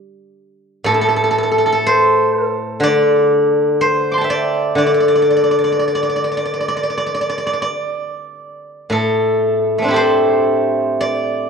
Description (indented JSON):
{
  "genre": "chinese traditional, Chinese solo plucked strings",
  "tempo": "55-63 BPM",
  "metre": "4/4",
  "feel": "rubato",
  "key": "D shang mode",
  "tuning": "A4 = 440 Hz",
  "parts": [
    { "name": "steel-string zither", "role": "solo", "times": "0.8-11.5 s", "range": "A2 to D6", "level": "-14 LUFS", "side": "equal", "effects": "none" }
  ],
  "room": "moderate scoring stage reverb, RT60 1.7 s",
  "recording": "worn, warbling old tape, cassette tape, warbly pitch drift",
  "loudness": "-14 LUFS",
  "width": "side -6 dB against mid",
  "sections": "0.0-11.5 A section",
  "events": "none",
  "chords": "none",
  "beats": "| 0.87 1.84 2.81 3.79 | 4.77 5.77 6.78 7.83 | 8.91 9.98 11.01"
}